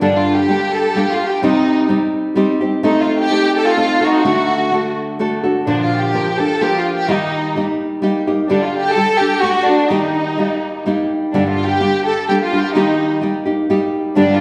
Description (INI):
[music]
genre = mexican folk, mariachi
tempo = 127 BPM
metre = 3/4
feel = straight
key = G minor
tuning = A4 = 440 Hz
[part]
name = warm symphonic violin section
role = melody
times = 0.0-14.4 s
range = D4 to A4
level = -19 LUFS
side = equal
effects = none
[part]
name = nylon-string guitar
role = accompaniment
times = 0.0-14.4 s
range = G2 to Bb4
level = -18 LUFS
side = equal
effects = none
[sound]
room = wet recital hall reverb, RT60 1.2 s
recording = heard from further back in the room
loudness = -16 LUFS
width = mono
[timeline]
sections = 0.0-14.4 A section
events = none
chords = 0.0 Gmadd9; 1.4 Cm; 2.8 Adim; 4.2 D; 5.7 Bb; 7.1 Eb; 8.5 Dsus4; 9.4 D; 9.9 Eb; 11.3 Gm; 12.8 Eb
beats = | 0.01 0.49 0.96 | 1.43 1.90 2.37 | 2.83 3.30 3.77 | 4.25 4.72 5.20 | 5.68 6.15 6.63 | 7.10 7.57 8.04 | 8.50 8.97 9.44 | 9.91 10.38 10.86 | 11.34 11.81 12.28 | 12.75 13.22 13.69 | 14.15